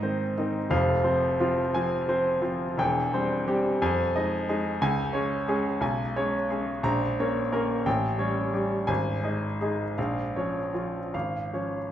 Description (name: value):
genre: classical, romantic character piece for solo piano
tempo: 58 BPM (dotted quarters)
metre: 6/8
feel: rubato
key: Db major from 4.8 s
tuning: A4 = 440 Hz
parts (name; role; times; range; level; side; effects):
- warm grand piano; solo; 0.0-11.9 s; E1 to Bb5; -24 LUFS; equal; none
room: wet recital hall reverb, RT60 1.7 s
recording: recorded in a church or concert hall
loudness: -24 LUFS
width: side -11 dB against mid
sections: 0.0-11.9 A section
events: none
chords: 0.0 Ab; 0.7 Fm; 2.8 C/E; 3.8 Fm7; 4.8 Db5; 5.8 Db5/Cb; 6.8 Bbm; 7.9 A7; 8.9 Ab5; 10.0 Bbm; 11.1 Db/Ab